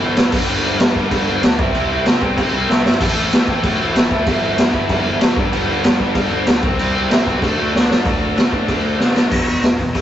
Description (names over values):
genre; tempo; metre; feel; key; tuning
punk rock; 190 BPM; 4/4; straight; unclear; A4 = 439 Hz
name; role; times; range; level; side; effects
cranked stack guitar; riff; 0.0-9.3 s; E2 to D4; -25 LUFS; right 4 dB; overdrive
tight distorted guitar; riff; 0.0-10.0 s; E2 to D4; -22 LUFS; left 3 dB; distortion
fuzz picked electric bass; bass; 0.0-10.0 s; E1 to C3; -24 LUFS; equal; overdrive
bluesy overdriven lead guitar; melody; 0.2-7.9 s; A3 to A5; -26 LUFS; right 2 dB; distortion
raw garage drum kit; drums; 0.2-10.0 s; crash cymbal, hi-hat, kick drum, snare drum; -16 LUFS; equal; none
room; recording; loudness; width
light reverb; rough rehearsal-room recording, warm saturation, nothing above 7.9 kHz; -14 LUFS; side -11 dB against mid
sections
0.0-8.1 A section; 8.1-9.3 B section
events
drum fill 2.7-3.0, 7.7-8.1, 9.0-9.3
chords
0.3 G; 1.6 C; 3.0 A5; 4.3 Em/G; 5.4 G; 6.6 C; 7.4 D; 8.1 D5; 9.3 E5